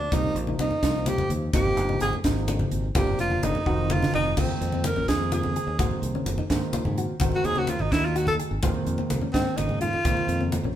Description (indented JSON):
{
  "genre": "electric jazz fusion",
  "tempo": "85 BPM (dotted quarters)",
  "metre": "6/8",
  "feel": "straight",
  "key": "Bb minor from 4.4 s",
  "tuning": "A4 = 437 Hz",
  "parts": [
    { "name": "breathy tenor saxophone", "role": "melody", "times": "0.0-10.5 s", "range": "C4 to Bb4", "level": "-27 LUFS", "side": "right 1 dB", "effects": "none" },
    { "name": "fingered electric bass", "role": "bass", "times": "0.0-10.7 s", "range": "F1 to Ab2", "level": "-29 LUFS", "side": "equal", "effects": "none" },
    { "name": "dark grand piano", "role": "accompaniment", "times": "0.1-10.6 s", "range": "Bb2 to Eb4", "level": "-31 LUFS", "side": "right 4 dB", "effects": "none" },
    { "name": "mellow electric guitar", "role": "stabs", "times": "0.1-10.8 s", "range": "C4 to Ab4", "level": "-35 LUFS", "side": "left 6 dB", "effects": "tape echo" },
    { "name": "crisp fusion drum kit", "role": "drums", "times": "0.1-10.6 s", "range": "crash cymbal, hi-hat, kick drum, snare drum, toms", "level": "-28 LUFS", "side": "equal", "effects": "none" },
    { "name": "congas", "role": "percussion", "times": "0.1-10.8 s", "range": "none", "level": "-31 LUFS", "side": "left 2 dB", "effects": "none" }
  ],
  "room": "moderate stone room reverb, RT60 1.2 s",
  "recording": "band playing live in one room",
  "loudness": "-22 LUFS",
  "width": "side -11 dB against mid",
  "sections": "0.0-4.4 A section; 4.4-10.8 A section",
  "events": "tenor saxophone solo 0.0-10.8; drum fill 3.7-4.4, 9.7-10.0",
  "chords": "0.1 Cm7; 1.5 Abmaj9; 3.0 Gm7; 3.7 F7b9; 4.4 Bb7sus2; 5.8 Ab9; 7.2 Ab7b9; 8.6 Dbmaj7/Ab; 10.0 Bbm9"
}